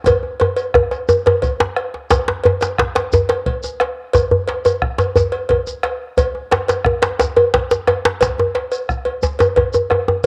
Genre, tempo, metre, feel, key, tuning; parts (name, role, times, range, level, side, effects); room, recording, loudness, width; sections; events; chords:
west african traditional, West African drum ensemble; 118 BPM (dotted quarters); 12/8; straight
bombo; percussion; 0.1-10.3 s; -25 LUFS; equal
cowbell; percussion; 0.1-10.3 s; -23 LUFS; equal
djembe; percussion; 0.1-10.1 s; -27 LUFS; equal
djembe; percussion; 0.1-10.2 s; -17 LUFS; equal
shekere; percussion; 0.1-9.9 s; -32 LUFS; equal
moderate spring reverb, RT60 1.5 s, small room reverb; home recording on cassette; -17 LUFS; mono
0.0-2.1 A section; 2.1-10.3 B section
drum fill 0.1-2.1